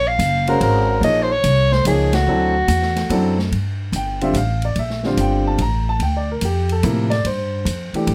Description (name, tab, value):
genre	modal jazz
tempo	144 BPM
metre	3/4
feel	swing 67% on 8ths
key	Eb dorian, G dorian from 3.5 s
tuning	A4 = 441 Hz
part	mellow soprano saxophone	melody	0.0-3.4 s	Gb4 to F5	-21 LUFS	equal	none
part	upright bass	bass	0.0-8.1 s	Gb1 to A2	-22 LUFS	equal	none
part	swinging big-band drum kit	drums	0.2-8.1 s	hi-hat, ride cymbal, snare drum	-32 LUFS	equal	none
part	warm grand piano	accompaniment	0.5-8.1 s	C3 to Bb5	-23 LUFS	equal	none
room	light reverb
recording	none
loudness	-19 LUFS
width	mono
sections	0.0-3.5 A section; 3.5-8.1 B section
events	band accent 2.1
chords	0.0 Ebm11; 2.3 D7; 3.5 Gm11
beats	0.20 0.61 | 1.03 1.44 1.86 | 2.27 2.69 3.10 | 3.52 3.93 4.35 | 4.76 5.18 5.59 | 6.01 6.42 6.84 | 7.26 7.67 8.09